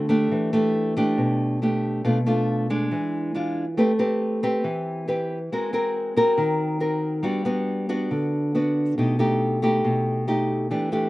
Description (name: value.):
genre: bossa nova.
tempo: 138 BPM.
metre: 4/4.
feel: straight.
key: E minor.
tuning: A4 = 440 Hz.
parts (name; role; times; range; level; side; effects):
nylon-string guitar; solo; 0.0-11.1 s; B2 to B4; -21 LUFS; equal; none.
room: light reverb.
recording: recorded outdoors, with no room sound, nothing above 10.6 kHz.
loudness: -21 LUFS.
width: side -18 dB against mid.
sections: 0.3-11.1 A section.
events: none.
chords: 0.3 Em7; 2.0 Bm7b5; 2.9 E7b9; 3.8 Am9; 5.5 G#9; 7.2 Gmaj7; 9.0 Baug7.